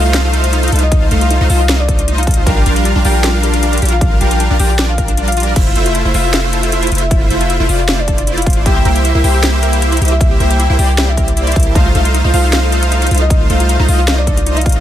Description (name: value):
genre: future bass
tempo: 155 BPM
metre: 4/4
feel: half-time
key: F major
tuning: A4 = 440 Hz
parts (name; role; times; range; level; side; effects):
- soft octave-layered synth lead; melody; 0.0-14.8 s; D5 to G5; -22 LUFS; left 3 dB; chorus, tremolo, sidechain pumping, tape echo
- supersaw chords; riff; 0.0-14.8 s; G3 to A5; -17 LUFS; equal; analog chorus, sidechain pumping
- long sustained 808-style bass; bass; 0.0-14.8 s; F1 to C2; -14 LUFS; equal; sidechain pumping
- wide unison pluck; arpeggios; 0.1-14.8 s; D4 to F5; -24 LUFS; equal; sidechain pumping, ping-pong delay
- trap drum kit; drums; 0.1-14.8 s; crash cymbal, hi-hat, snare drum; -20 LUFS; left 1 dB; none
- electronic kick drum; drums; 0.9-14.7 s; none; -14 LUFS; equal; none
room: digital ambience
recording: none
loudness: -10 LUFS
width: side -11 dB against mid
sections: 0.0-14.8 A section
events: kick drops out 5.2-5.6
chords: 0.0 F7/C; 2.5 Bb6; 5.6 Fmaj7; 8.7 C7; 11.8 F7/C